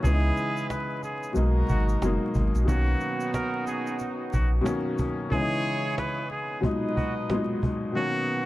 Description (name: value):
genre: hip hop, boom-bap hip-hop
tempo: 91 BPM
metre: 4/4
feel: swing 60% on 16ths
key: B major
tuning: A4 = 442 Hz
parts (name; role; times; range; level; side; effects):
- trumpet with straight mute; melody; 0.0-8.5 s; F#4 to B4; -32 LUFS; equal; ping-pong delay
- clear upright piano; accompaniment; 0.0-8.5 s; A#2 to D#4; -28 LUFS; left 2 dB; none
- warm horn section; stabs; 0.0-8.5 s; B3 to D#5; -34 LUFS; right 2 dB; ping-pong delay
- warm sub bass; bass; 0.0-4.6 s; F#1 to C#2; -23 LUFS; equal; none
- cajon; drums; 0.0-7.8 s; none; -30 LUFS; equal; none
- tube shaker; percussion; 0.0-5.2 s; none; -51 LUFS; right 5 dB; none
room: small room ambience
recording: dark, warm production, vinyl crackle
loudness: -24 LUFS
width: side -16 dB against mid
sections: 0.0-8.5 A section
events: none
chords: 0.0 C#m7; 1.4 G#m9; 2.7 Bmaj7; 5.3 C#m7; 6.6 G#m9; 8.0 Bmaj7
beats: | 0.04 0.70 1.36 2.02 | 2.68 3.34 4.00 4.66 | 5.32 5.98 6.64 7.29 | 7.96